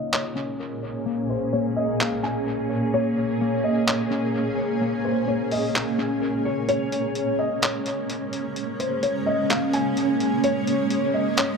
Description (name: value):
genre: hip hop, atmospheric cloud-rap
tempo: 128 BPM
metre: 4/4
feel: half-time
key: Bb minor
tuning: A4 = 439 Hz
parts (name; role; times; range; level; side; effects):
- felt-muted upright piano; melody; 0.0-11.6 s; C5 to Ab5; -27 LUFS; left 1 dB; low-pass filter, dub echo
- granular cloud pad; sustained chords; 0.0-11.6 s; Bb2 to Ab4; -24 LUFS; right 1 dB; built-in reverb, low-pass filter
- mellow electric guitar; arpeggios; 0.0-6.7 s; Bb3 to Db5; -29 LUFS; left 6 dB; low-pass filter, dub echo
- lo-fi sampler-style drum kit; drums; 0.1-11.5 s; handclaps, hi-hat; -27 LUFS; equal; overdrive, dub echo
room: moderate spring reverb, RT60 2.6 s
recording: echo-heavy mix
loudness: -22 LUFS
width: side -5 dB against mid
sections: 0.0-6.7 A section; 6.7-11.6 B section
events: filter sweep 0.0-6.7; kick muted 6.7-11.6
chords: 0.0 Bbm7